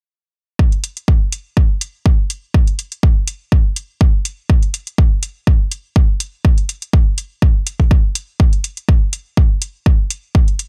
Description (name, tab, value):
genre	minimal techno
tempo	123 BPM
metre	4/4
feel	swing 53% on 16ths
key	none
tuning	none
part	electronic kick drum	drums	0.6-10.5 s	none	-14 LUFS	equal	none
part	electronic hi-hat	drums	0.7-10.7 s	none	-24 LUFS	equal	none
room	little or no reverb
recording	none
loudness	-16 LUFS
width	mono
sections	0.6-10.7 A section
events	none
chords	none